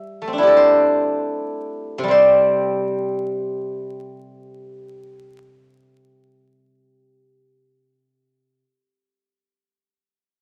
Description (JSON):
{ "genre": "chinese traditional, Chinese solo plucked strings", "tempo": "37-41 BPM", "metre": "4/4", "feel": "rubato", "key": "C gong mode", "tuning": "A4 = 441 Hz", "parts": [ { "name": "steel-string zither", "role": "solo", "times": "0.0-8.6 s", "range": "C3 to E5", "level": "-18 LUFS", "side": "equal", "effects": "none" } ], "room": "moderate studio reverb, RT60 0.8 s", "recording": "vinyl crackle", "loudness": "-18 LUFS", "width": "mono", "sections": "0.0-2.1 A section; 2.1-8.2 B section", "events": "slowing down 0.0-2.1", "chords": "none", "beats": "0.51 | 2.10 3.64 5.13 6.67" }